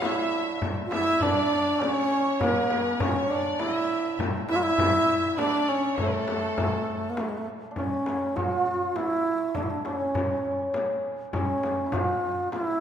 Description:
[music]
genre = Persian modal ensemble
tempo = 101 BPM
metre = 3/4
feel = straight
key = unclear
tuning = A4 = 440 Hz
[part]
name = bright reedy wooden-headed alto flute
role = melody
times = 0.0-12.8 s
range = G#3 to F4+47c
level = -26 LUFS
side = right 1 dB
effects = none
[part]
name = clear studio violin section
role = second line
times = 0.0-7.1 s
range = A4 to E5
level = -31 LUFS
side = right 1 dB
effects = none
[part]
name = santur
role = second line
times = 0.0-12.8 s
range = A3 to F4+45c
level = -32 LUFS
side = right 1 dB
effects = none
[part]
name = frame drum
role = percussion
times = 0.0-12.7 s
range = none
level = -33 LUFS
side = left 3 dB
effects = none
[part]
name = tombak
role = percussion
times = 0.0-12.7 s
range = none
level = -35 LUFS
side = left 1 dB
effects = none
[sound]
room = wet concert hall reverb, RT60 2.5 s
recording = minimal, uncompressed stereo recording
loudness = -24 LUFS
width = side -9 dB against mid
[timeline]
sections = 0.0-7.8 A section; 7.8-12.8 B section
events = none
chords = none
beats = 0.02 | 0.62 1.22 1.81 | 2.41 3.00 3.60 | 4.20 4.79 5.39 | 5.98 6.58 7.17 | 7.77 8.36 8.96 | 9.55 10.15 10.74 | 11.34 11.93 12.53

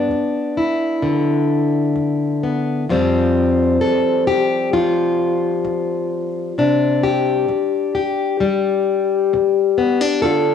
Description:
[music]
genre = folk, solo fingerstyle acoustic guitar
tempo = 65 BPM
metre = 4/4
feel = straight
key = C major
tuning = A4 = 439 Hz
[part]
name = fingerpicked plugged-in steel-string acoustic guitar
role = solo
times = 0.0-10.5 s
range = F2 to A4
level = -16 LUFS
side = left 2 dB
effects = none
[sound]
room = light reverb, studio ambience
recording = home recording on cassette, small room ambience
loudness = -16 LUFS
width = side -7 dB against mid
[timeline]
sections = 0.0-10.5 A section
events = none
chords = 0.0 G (rootless); 2.9 Fsus2; 6.6 Csus2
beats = 0.12 1.03 1.96 | 2.89 3.81 4.74 5.66 | 6.58 7.49 8.41 9.32 | 10.23

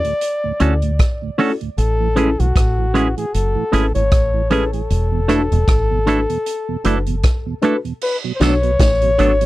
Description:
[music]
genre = lovers rock reggae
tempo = 77 BPM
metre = 4/4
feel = swing 57% on 16ths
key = A major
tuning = A4 = 441 Hz
[part]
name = mellow flugelhorn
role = melody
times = 0.0-9.5 s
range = F#4 to D5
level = -21 LUFS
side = left 2 dB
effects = tape echo
[part]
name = mellow tine electric piano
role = accompaniment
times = 0.0-9.5 s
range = C#4 to C#5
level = -20 LUFS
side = left 3 dB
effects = phaser
[part]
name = mellow tonewheel organ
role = accompaniment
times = 0.0-9.5 s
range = D2 to G#4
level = -25 LUFS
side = right 7 dB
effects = chorus vibrato, slow rotary speaker
[part]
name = vintage drum kit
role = drums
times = 0.0-9.5 s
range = crash cymbal, hi-hat, kick drum, rim click, snare drum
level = -18 LUFS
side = equal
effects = none
[part]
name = semi-hollow electric guitar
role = stabs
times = 0.6-9.3 s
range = F#3 to A4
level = -18 LUFS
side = right 4 dB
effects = none
[part]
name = deep dub fingered electric bass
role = bass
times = 0.6-9.5 s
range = E1 to D2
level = -18 LUFS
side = equal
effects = none
[sound]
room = light reverb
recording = dry, close 1970s-style studio recording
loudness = -15 LUFS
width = side -17 dB against mid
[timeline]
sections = 0.0-8.0 A section; 8.0-9.5 B section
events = none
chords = 0.0 Dmaj7; 1.8 Amaj7; 4.9 E7sus4; 8.0 Bm7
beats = 0.22 1.00 | 1.78 2.56 3.34 4.12 | 4.90 5.68 6.46 7.24 | 8.02 8.80

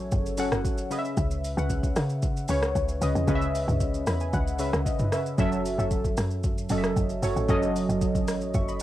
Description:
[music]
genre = amapiano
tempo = 114 BPM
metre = 4/4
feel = straight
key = F# dorian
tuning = A4 = 441 Hz
[part]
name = warm analog keys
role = accompaniment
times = 0.0-8.8 s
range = C#3 to C#6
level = -27 LUFS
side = equal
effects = chorus, cassette tape
[part]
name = tight log drum bass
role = bass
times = 0.0-8.8 s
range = F#1 to C#3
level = -29 LUFS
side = equal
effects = none
[part]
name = deep house drum kit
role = drums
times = 0.1-8.8 s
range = hi-hat, kick drum, rim click, shaker, toms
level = -29 LUFS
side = equal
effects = overdrive, cassette tape
[sound]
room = digital ambience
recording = home recording on cassette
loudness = -24 LUFS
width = side -14 dB against mid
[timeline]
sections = 0.0-8.8 A section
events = synth keys fill 3.8-5.4, 8.5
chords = 0.0 F#m7; 0.9 C#m7; 5.4 F#m7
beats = 0.12 0.65 | 1.17 1.70 2.23 2.75 | 3.28 3.81 4.33 4.86 | 5.38 5.91 6.44 6.96 | 7.49 8.02 8.54

